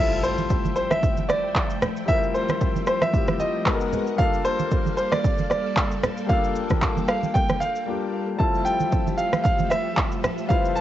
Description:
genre	amapiano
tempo	114 BPM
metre	4/4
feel	swing 55% on 16ths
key	F major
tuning	A4 = 441 Hz
part	clear baby grand piano	melody	0.0-10.8 s	C5 to A5	-25 LUFS	right 1 dB	cassette tape, analog delay
part	warm concert grand piano	accompaniment	0.0-10.8 s	G3 to C5	-29 LUFS	left 7 dB	none
part	string machine, violins	sustained chords	0.0-10.8 s	F3 to G5	-32 LUFS	right 1 dB	ensemble chorus
part	impact	sound effects	0.0-2.1 s	none	-35 LUFS	equal	none
part	deep house drum kit	drums	0.1-10.8 s	handclaps, kick drum, rim click, shaker	-23 LUFS	equal	overdrive, cassette tape
part	congas	percussion	0.4-10.4 s	none	-30 LUFS	right 7 dB	none
room	light reverb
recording	home recording on cassette, nothing above 7.8 kHz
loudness	-20 LUFS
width	side -12 dB against mid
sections	0.0-10.8 A section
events	impact 0.0-2.1; break 7.9-8.4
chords	0.0 Fmaj9; 3.7 Abm9; 4.2 Gm9; 8.4 Fmaj9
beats	0.50 1.03 1.56 | 2.08 2.61 3.14 3.66 | 4.19 4.71 5.24 5.77 | 6.29 6.82 7.35 7.87 | 8.40 8.93 9.45 9.98 | 10.50

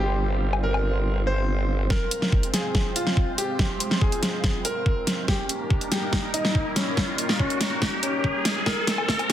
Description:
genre	heavy wobble dubstep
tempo	142 BPM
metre	4/4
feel	half-time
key	F minor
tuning	A4 = 441 Hz
part	bright grand piano	melody	0.0-9.3 s	Db4 to C5	-29 LUFS	equal	dub echo
part	lush unison pad	sustained chords	0.0-9.3 s	G3 to C5	-32 LUFS	right 1 dB	chorus, phaser, sidechain pumping
part	formant-sweep wobble bass	bass	0.0-1.9 s	G1	-24 LUFS	equal	chorus, overdrive
part	dubstep drum kit	drums	0.5-9.3 s	hi-hat, snare drum, woodblock	-26 LUFS	equal	none
part	electronic kick drum	drums	1.9-9.2 s	none	-24 LUFS	equal	none
part	riser	sound effects	4.1-9.3 s	none	-30 LUFS	equal	none
room	light reverb, digital ambience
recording	dense, heavily limited modern master, high-pass filter, low-pass filter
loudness	-22 LUFS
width	side -11 dB against mid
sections	0.0-1.9 A section; 1.9-9.3 B section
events	filter sweep on analog synth pad 0.0-1.9; build-up 1.9-9.3; drum fill 1.9-9.3; filter sweep 1.9-9.3; riser 4.1-9.3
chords	0.0 Csus4/G; 1.9 Fm; 5.3 Eb; 8.7 Fm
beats	| 0.21 0.64 1.06 1.48 | 1.90 2.33 2.75 3.17 | 3.59 4.01 4.44 4.86 | 5.28 5.71 6.13 6.55 | 6.97 7.39 7.82 8.24 | 8.66 9.09

